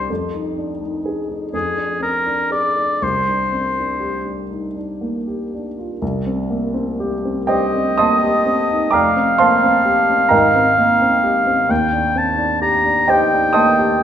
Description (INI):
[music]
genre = classical, impressionist duo for oboe and grand piano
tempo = 39-45 BPM (dotted quarters)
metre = 6/8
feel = rubato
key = C dorian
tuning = A4 = 441 Hz
[part]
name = warm oboe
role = melody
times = 0.0-14.0 s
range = Ab4 to Bb5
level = -17 LUFS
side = left 1 dB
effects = none
[part]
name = dark baby grand piano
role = accompaniment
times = 0.0-14.0 s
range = F1 to Eb6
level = -18 LUFS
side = right 1 dB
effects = none
[sound]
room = wet scoring stage reverb, RT60 1.4 s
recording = minimal, uncompressed stereo recording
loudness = -15 LUFS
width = side -9 dB against mid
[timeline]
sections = 0.0-6.0 A section; 6.0-14.0 A section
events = none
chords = 0.1 Fm7; 1.5 Fm6; 3.0 Cm9; 6.0 Cm7; 8.9 Fadd9; 10.3 Abmaj9; 11.7 Ebmaj7